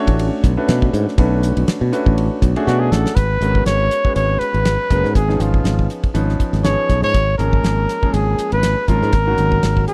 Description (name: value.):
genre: electric jazz fusion.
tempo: 121 BPM.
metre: 4/4.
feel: swing 55% on 16ths.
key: G# dorian.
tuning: A4 = 440 Hz.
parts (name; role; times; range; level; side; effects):
clear concert grand piano; accompaniment; 0.0-9.9 s; D#3 to F#5; -25 LUFS; equal; none.
modern bright fingered electric bass; bass; 0.1-9.8 s; F#1 to B2; -20 LUFS; equal; none.
damped 70s drum kit; drums; 0.1-9.9 s; hi-hat, kick drum, ride cymbal, snare drum; -20 LUFS; equal; none.
warm trumpet; melody; 2.7-9.9 s; E#4 to C#5; -22 LUFS; equal; none.
room: little or no reverb.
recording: dry, close 1970s-style studio recording.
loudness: -17 LUFS.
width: mono.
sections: 0.0-3.2 A section; 3.2-9.9 B section.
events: grand piano fill 2.4-3.2; drum fill 2.7-3.2.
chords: 0.0 Bm9; 3.2 G#m11; 5.2 C#9/G#; 7.1 A#m7/G#; 9.1 D#m7/G#.